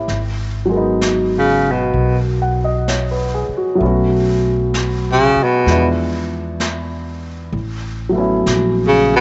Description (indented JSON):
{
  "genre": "jazz ballad",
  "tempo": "64 BPM",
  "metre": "4/4",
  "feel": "swing 66% on 8ths",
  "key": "G# minor",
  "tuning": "A4 = 441 Hz",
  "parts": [
    { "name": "warm baby grand piano", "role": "accompaniment", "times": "0.0-9.2 s", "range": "F3 to F#5", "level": "-21 LUFS", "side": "equal", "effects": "none" },
    { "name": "upright bass", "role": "bass", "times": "0.0-9.2 s", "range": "G#1 to E2", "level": "-23 LUFS", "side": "equal", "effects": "none" },
    { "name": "jazz brush drum kit", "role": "drums", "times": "0.1-9.2 s", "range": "brushed snare drum, hi-hat, snare drum", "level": "-30 LUFS", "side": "equal", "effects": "none" },
    { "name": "warm baritone saxophone", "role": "melody", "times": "1.4-9.2 s", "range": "B2 to C#3", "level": "-16 LUFS", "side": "equal", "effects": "none" }
  ],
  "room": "moderate spring reverb, RT60 2.4 s",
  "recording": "nothing above 7.9 kHz",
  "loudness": "-17 LUFS",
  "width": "mono",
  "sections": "0.1-9.2 A section",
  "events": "baritone saxophone solo 0.1-9.2",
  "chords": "0.1 G#m7; 3.8 B5; 5.7 E7b9; 7.5 A69"
}